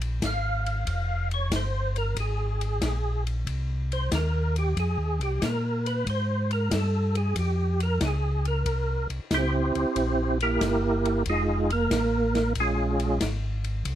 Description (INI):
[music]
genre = soul jazz organ trio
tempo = 92 BPM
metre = 4/4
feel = swing 68% on 8ths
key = F minor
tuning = A4 = 440 Hz
[part]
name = mellow tonewheel organ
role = bass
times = 0.0-14.0 s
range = F1 to Bb2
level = -27 LUFS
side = equal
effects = slow rotary speaker
[part]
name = open jazz drum kit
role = drums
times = 0.0-14.0 s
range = hi-hat, kick drum, ride cymbal, snare drum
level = -34 LUFS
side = left 2 dB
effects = none
[part]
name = percussive tonewheel organ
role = melody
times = 0.3-13.2 s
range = Ab3 to F5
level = -27 LUFS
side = right 2 dB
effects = slow rotary speaker, chorus vibrato
[sound]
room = little or no reverb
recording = close, detailed microphones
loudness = -24 LUFS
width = side -11 dB against mid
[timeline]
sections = 0.0-14.0 A section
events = tonewheel organ solo 0.0-14.0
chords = 0.0 Bb7(no3); 0.9 Fm9; 6.1 Db; 8.7 C7b9; 11.3 Fm7; 12.6 Bbm7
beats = 0.23 | 0.88 1.52 2.17 2.82 | 3.47 4.12 4.77 5.42 | 6.07 6.72 7.37 8.02 | 8.66 9.31 9.96 10.61 | 11.26 11.91 12.56 13.21 | 13.86